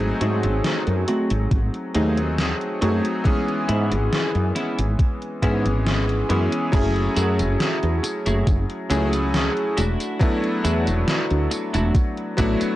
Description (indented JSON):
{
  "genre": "vaporwave",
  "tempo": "69 BPM",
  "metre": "4/4",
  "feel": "straight",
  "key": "F# minor",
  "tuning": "A4 = 440 Hz",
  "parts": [
    { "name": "bright electric grand piano", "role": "accompaniment", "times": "0.0-12.8 s", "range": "E3 to G#4", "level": "-23 LUFS", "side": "equal", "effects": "lush chorus, analog delay" },
    { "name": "woody fretless electric bass", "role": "bass", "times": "0.0-12.6 s", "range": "E1 to G#2", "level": "-22 LUFS", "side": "equal", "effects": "ensemble chorus" },
    { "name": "gated 80s digital drum machine", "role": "drums", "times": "0.0-12.8 s", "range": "crash cymbal, hi-hat, snare drum, tambourine", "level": "-27 LUFS", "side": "equal", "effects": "gated reverb, gated reverb snare" },
    { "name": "clean electric guitar", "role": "riff", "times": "0.2-12.6 s", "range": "A3 to G#4", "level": "-28 LUFS", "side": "right 1 dB", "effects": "lush chorus, analog delay" },
    { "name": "electronic kick drum", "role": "drums", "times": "1.5-12.6 s", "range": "none", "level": "-20 LUFS", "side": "equal", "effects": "none" }
  ],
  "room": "digital ambience",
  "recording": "dry, gritty hardware recording, cassette tape",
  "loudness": "-19 LUFS",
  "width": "side -15 dB against mid",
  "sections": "0.0-6.7 A section; 6.7-12.8 B section",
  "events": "band accent 5.9-6.3",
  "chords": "0.0 G#7b9; 3.3 C#m7/G#; 6.7 F#m9; 9.8 E9sus4"
}